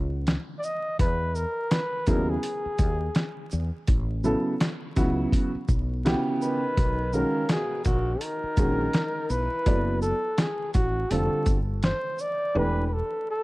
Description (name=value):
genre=hip hop, jazz-hop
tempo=83 BPM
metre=4/4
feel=swing 60% on 16ths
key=unclear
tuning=A4 = 439 Hz
part: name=woody fretless electric bass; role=bass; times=0.0-13.0 s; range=E1 to E2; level=-28 LUFS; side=equal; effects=analog chorus
part: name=dusty soul sampler-style drum kit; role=drums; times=0.3-12.4 s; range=hi-hat, kick drum, shaker, snare drum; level=-25 LUFS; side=equal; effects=overdrive
part: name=breathy flugelhorn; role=melody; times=0.6-13.4 s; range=F#4 to D#5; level=-29 LUFS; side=equal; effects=none
part: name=dark upright piano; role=accompaniment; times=2.1-12.8 s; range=C3 to D5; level=-27 LUFS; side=right 1 dB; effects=none
part: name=breathy tenor saxophone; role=second line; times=6.4-10.0 s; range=A#2 to E3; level=-36 LUFS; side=left 2 dB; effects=none
room=light reverb, small room reverb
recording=dark, warm production, vinyl crackle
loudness=-23 LUFS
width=side -20 dB against mid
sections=0.0-13.4 A section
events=none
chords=0.0 N.C.; 1.0 Emaj7; 3.9 A9; 6.8 Bmaj7; 9.7 F#m11; 11.1 Fadd9; 12.6 Em11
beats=0.27 | 0.99 1.72 2.44 3.16 | 3.88 4.61 5.33 6.05 | 6.78 7.50 8.22 8.95 | 9.67 10.39 11.11 11.84 | 12.56 13.28